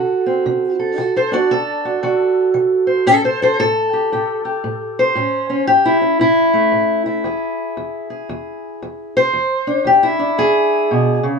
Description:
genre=acoustic country blues, solo or duo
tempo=115 BPM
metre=4/4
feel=swing 62% on 8ths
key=unclear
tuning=A4 = 440 Hz
part: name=fingerpicked steel-string acoustic guitar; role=solo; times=0.0-11.4 s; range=E2 to D5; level=-14 LUFS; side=equal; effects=none
room=wet studio ambience, RT60 0.5 s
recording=band playing live in one room, nothing above 10.9 kHz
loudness=-14 LUFS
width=side -5 dB against mid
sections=0.0-11.4 A section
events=none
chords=0.0 D7; 3.1 A7; 7.3 E7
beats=0.46 | 0.98 1.51 2.03 2.55 | 3.07 3.60 4.12 4.64 | 5.16 5.68 6.21 6.73 | 7.25 7.77 8.30 8.82 | 9.34 9.86 10.39 10.91

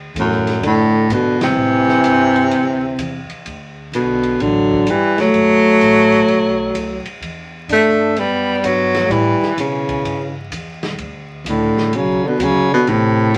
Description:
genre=jazz, small-group swing and bop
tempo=128 BPM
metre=4/4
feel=swing 66% on 8ths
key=D major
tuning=A4 = 441 Hz
part: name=upright bass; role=bass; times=0.0-13.4 s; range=F#1 to B2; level=-30 LUFS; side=equal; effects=none
part: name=breathy baritone saxophone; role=melody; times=0.2-13.4 s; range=F#2 to A3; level=-17 LUFS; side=equal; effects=none
part: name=mellow trombone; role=second line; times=0.2-13.4 s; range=A2 to D4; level=-21 LUFS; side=equal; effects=none
part: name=open jazz drum kit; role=drums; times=0.2-13.4 s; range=hi-hat, kick drum, ride cymbal, snare drum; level=-32 LUFS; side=equal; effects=none
room=wet small room reverb, RT60 0.5 s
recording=vinyl crackle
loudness=-16 LUFS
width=mono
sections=0.0-13.4 A section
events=band accent 1.3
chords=0.0 D; 1.6 Am7; 2.5 Dsus2; 3.5 Gmaj9; 5.3 F#m; 6.3 B5; 7.2 Em9; 9.1 A9; 11.0 D5; 12.9 Am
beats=0.16 0.63 1.10 | 1.57 2.04 2.51 2.98 | 3.45 3.92 4.40 4.87 | 5.34 5.81 6.28 6.75 | 7.22 7.69 8.16 8.63 | 9.10 9.57 10.04 10.51 | 10.98 11.46 11.93 12.39 | 12.87 13.34

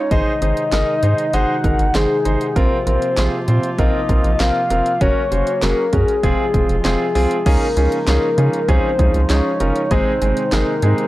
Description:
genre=synth-pop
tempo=98 BPM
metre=4/4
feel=straight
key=unclear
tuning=A4 = 440 Hz
part: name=soft octave-layered synth lead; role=melody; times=0.0-11.1 s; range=Ab4 to Gb5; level=-20 LUFS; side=left 2 dB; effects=chorus, tape echo
part: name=mellow woodwind section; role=sustained chords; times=0.0-11.1 s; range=C3 to Gb4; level=-26 LUFS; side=right 1 dB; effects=none
part: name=warm concert grand piano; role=accompaniment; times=0.1-11.0 s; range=Ab3 to C5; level=-22 LUFS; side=right 2 dB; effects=none
part: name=rubbery square bass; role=bass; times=0.1-10.9 s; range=F1 to Db3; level=-18 LUFS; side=equal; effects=none
part: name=punchy analog drum machine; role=drums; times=0.1-11.1 s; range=crash cymbal, handclaps, hi-hat, kick drum, snare drum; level=-21 LUFS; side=equal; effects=none
room=digital ambience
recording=dry, gritty hardware recording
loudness=-14 LUFS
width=side -17 dB against mid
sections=0.0-7.5 A section; 7.5-11.1 A section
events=none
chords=0.1 Ab; 2.6 Bbsus2; 5.0 Gb; 6.2 Fm; 7.5 Dbadd9; 9.9 Ab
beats=| 0.11 0.72 1.34 1.95 | 2.56 3.17 3.79 4.40 | 5.01 5.62 6.24 6.85 | 7.46 8.07 8.69 9.30 | 9.91 10.52

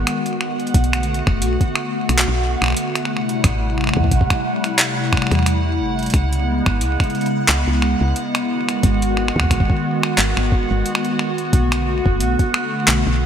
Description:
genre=IDM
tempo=89 BPM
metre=4/4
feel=swing 56% on 16ths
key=unclear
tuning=A4 = 436 Hz
part: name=hollow soft pad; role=sustained chords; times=0.0-13.3 s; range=C3 to F#4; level=-21 LUFS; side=left 1 dB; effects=ensemble chorus
part: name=woody FM bass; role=bass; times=0.0-13.3 s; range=F#1 to E2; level=-20 LUFS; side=equal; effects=none
part: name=bubbling stepped-filter texture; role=texture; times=0.0-13.3 s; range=F#5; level=-27 LUFS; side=right 5 dB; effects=chorus, built-in reverb
part: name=jungle sampler-style drum kit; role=drums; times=0.1-13.0 s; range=finger snaps, handclaps, hi-hat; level=-21 LUFS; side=equal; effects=overdrive
part: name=electronic kick drum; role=drums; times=0.7-12.5 s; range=none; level=-18 LUFS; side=equal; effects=overdrive
room=moderate lush hall reverb, RT60 2.5 s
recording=bright 1980s-style digital production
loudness=-16 LUFS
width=side -8 dB against mid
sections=0.0-13.3 A section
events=none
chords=0.0 G#m7; 0.7 Bm7; 3.1 Am7; 6.1 C#m7; 8.5 G#m7; 11.5 Bm7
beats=0.07 | 0.74 1.42 2.09 2.77 | 3.44 4.12 4.79 5.46 | 6.14 6.81 7.49 8.16 | 8.83 9.51 10.18 10.86 | 11.53 12.21 12.88

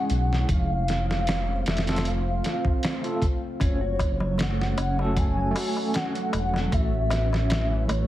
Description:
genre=trip hop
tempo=77 BPM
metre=4/4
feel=swing 54% on 16ths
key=unclear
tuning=A4 = 440 Hz
part: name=pure breathy sine lead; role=melody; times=0.0-8.1 s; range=C#5 to G#5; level=-31 LUFS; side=left 1 dB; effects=ensemble chorus, tape echo
part: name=overdriven tine electric piano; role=accompaniment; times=0.0-6.7 s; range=G#3 to A4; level=-32 LUFS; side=equal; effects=medium tremolo, tape echo
part: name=deep dark ambient pad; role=sustained chords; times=0.0-8.1 s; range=F#3 to C#5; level=-33 LUFS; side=equal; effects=chorus, built-in reverb
part: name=dark detuned saw bass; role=bass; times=0.1-8.1 s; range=E1 to B1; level=-26 LUFS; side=equal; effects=none
part: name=dusty soul sampler-style drum kit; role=drums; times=0.1-8.1 s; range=hi-hat, kick drum, snare drum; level=-27 LUFS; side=equal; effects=none
part: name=mellow electric guitar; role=arpeggios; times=3.6-8.1 s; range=E3 to F#4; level=-32 LUFS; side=right 3 dB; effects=tremolo, tape echo
part: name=darbuka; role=percussion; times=3.6-8.1 s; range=none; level=-36 LUFS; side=left 3 dB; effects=none
room=little or no reverb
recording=heavily compressed radio sound, vinyl crackle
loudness=-22 LUFS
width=side -14 dB against mid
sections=0.0-8.1 A section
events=none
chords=0.5 F; 3.6 F#m; 6.7 Aadd9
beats=| 0.48 1.26 2.04 2.82 | 3.60 4.38 5.16 5.94 | 6.72 7.50

